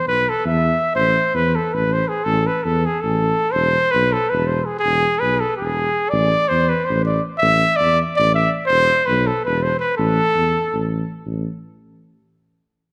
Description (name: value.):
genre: balkan folk.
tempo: 326 BPM (eighths).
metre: 7/8.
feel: straight.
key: A harmonic minor.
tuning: A4 = 440 Hz.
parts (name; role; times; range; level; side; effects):
mellow trumpet; melody; 0.0-10.9 s; G#4 to E5; -20 LUFS; equal; none.
dark tuba; bass; 0.1-11.5 s; E1 to E2; -24 LUFS; equal; none.
room: moderate concert hall reverb, RT60 1.8 s.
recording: none.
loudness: -18 LUFS.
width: mono.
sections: 1.0-11.3 A section; 11.3-12.5 B section.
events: none.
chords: 0.0 E5; 1.0 Am; 3.5 E; 6.1 A5; 8.7 E5; 10.0 A5; 11.3 N.C..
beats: 0.04 0.23 0.41 0.60 0.78 | 0.97 1.15 1.33 1.52 1.71 1.89 2.07 | 2.26 2.44 2.63 2.81 3.00 3.18 3.37 | 3.55 3.73 3.92 4.10 4.29 4.47 4.66 | 4.84 5.03 5.21 5.39 5.58 5.76 5.95 | 6.13 6.31 6.50 6.68 6.86 7.05 7.23 | 7.41 7.60 7.78 7.96 8.15 8.33 8.51 | 8.70 8.88 9.06 9.25 9.43 9.61 9.79 | 9.98 10.16 10.34 10.52 10.71 10.89 11.07 | 11.25 11.44.